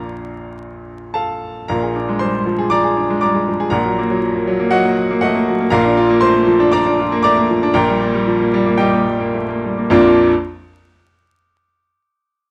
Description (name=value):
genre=classical, virtuoso piano study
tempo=104-122 BPM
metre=4/4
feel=rubato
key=Bb major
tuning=A4 = 440 Hz
part: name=clear baby grand piano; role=solo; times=0.0-10.3 s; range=Bb1 to D6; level=-16 LUFS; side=equal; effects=none
room=moderate large studio reverb, RT60 0.9 s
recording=vinyl crackle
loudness=-16 LUFS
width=mono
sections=0.0-1.7 A section; 1.7-9.9 B section; 9.9-12.1 C section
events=slowing down 4.7-9.9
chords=0.0 Bb; 1.7 Bb7; 3.7 Ebm/Bb; 5.7 Bb; 7.7 Eb/Bb; 9.9 Bb